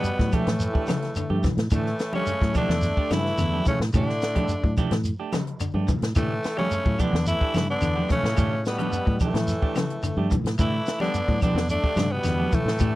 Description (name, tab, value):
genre	afrobeat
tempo	108 BPM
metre	4/4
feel	straight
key	A mixolydian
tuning	A4 = 440 Hz
part	growling tenor saxophone	melody	0.0-13.0 s	A3 to E4	-28 LUFS	equal	none
part	bright trombone	second line	0.0-13.0 s	E3 to B3	-34 LUFS	right 2 dB	none
part	muted trombone section	second line	0.0-13.0 s	A2 to E3	-36 LUFS	left 2 dB	none
part	electric guitar at the edge of break-up	arpeggios	0.0-13.0 s	A2 to G3	-32 LUFS	left 6 dB	wide subtle chorus
part	semi-hollow electric guitar	stabs	0.0-13.0 s	E3 to G4	-32 LUFS	right 8 dB	none
part	fingered electric bass	bass	0.0-13.0 s	E2 to A2	-26 LUFS	equal	none
part	compact cocktail drum kit	drums	0.0-12.9 s	hi-hat, kick drum, snare drum	-26 LUFS	equal	none
part	shekere	percussion	0.0-12.9 s	none	-31 LUFS	right 1 dB	none
part	claves	percussion	0.3-12.9 s	none	-42 LUFS	left 6 dB	none
part	congas	percussion	0.3-12.7 s	none	-30 LUFS	right 1 dB	none
room	little or no reverb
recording	dry, close 1970s-style studio recording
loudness	-22 LUFS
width	side -17 dB against mid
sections	0.0-13.0 A section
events	none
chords	0.0 A7sus4